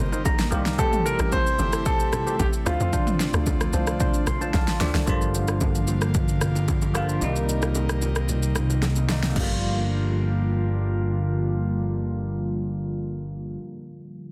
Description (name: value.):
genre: amapiano.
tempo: 112 BPM.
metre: 4/4.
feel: straight.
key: G minor.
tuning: A4 = 440 Hz.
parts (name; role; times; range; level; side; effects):
bell-like tine electric piano; accompaniment; 0.0-14.3 s; C3 to C6; -32 LUFS; equal; phaser, low-pass filter.
airy breathy pad; sustained chords; 0.0-13.6 s; C3 to F4; -34 LUFS; equal; chorus, low-pass filter.
percussive organ stab; stabs; 0.0-4.9 s; D4 to C5; -35 LUFS; equal; chorus, tape echo.
tight log drum bass; bass; 0.0-5.1 s; G1 to F2; -29 LUFS; equal; none.
deep house drum kit; drums; 0.1-9.5 s; crash cymbal, kick drum, rim click, shaker, snare drum, toms; -28 LUFS; equal; overdrive.
bongos and congas; percussion; 0.1-9.6 s; none; -37 LUFS; equal; none.
warm concert grand piano; melody; 0.8-4.8 s; F4 to C5; -30 LUFS; equal; tape echo.
fingered electric bass; bass; 5.1-13.6 s; G1 to C2; -28 LUFS; equal; none.
room: light reverb.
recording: dense, heavily limited modern master.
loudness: -24 LUFS.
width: mono.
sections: 0.0-5.1 A section; 5.1-9.4 B section; 9.4-13.6 C section.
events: tine electric piano fill 0.0-0.8, 4.0-5.1; drum fill 4.5-5.1, 8.8-9.4; filter sweep 5.1-9.4.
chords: 0.0 Cm7; 0.8 Am7; 2.7 Dm7; 5.1 Gm7; 7.2 Cm7; 9.4 Gm7.